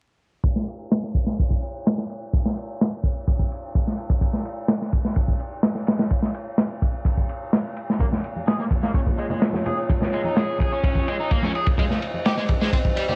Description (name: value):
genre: breakbeat, breaks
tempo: 127 BPM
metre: 4/4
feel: straight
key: Bb minor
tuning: A4 = 437 Hz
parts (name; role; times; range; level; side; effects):
- crunchy breakbeat drum kit; drums; 0.4-13.1 s; kick drum, ride cymbal, snare drum; -24 LUFS; equal; low-pass filter on kick, low-pass filter on cymbals, low-pass filter on snare, low-pass filter on room
- dark analog pad; sustained chords; 8.0-13.2 s; Bb3 to Eb5; -31 LUFS; equal; chorus, sidechain pumping
- crunchy overdriven guitar; riff; 8.0-13.2 s; G3 to Ab4; -31 LUFS; equal; tube saturation, analog delay
- congas; percussion; 8.0-13.2 s; none; -34 LUFS; equal; none
room: small room ambience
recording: dry, gritty hardware recording, vinyl crackle, low-pass filter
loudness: -23 LUFS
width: mono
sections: 0.4-13.2 A section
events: filter sweep on drum 0.4-13.2; filter sweep 0.4-13.2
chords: 0.4 N.C.; 8.0 Bbm7; 11.8 Ab (rootless)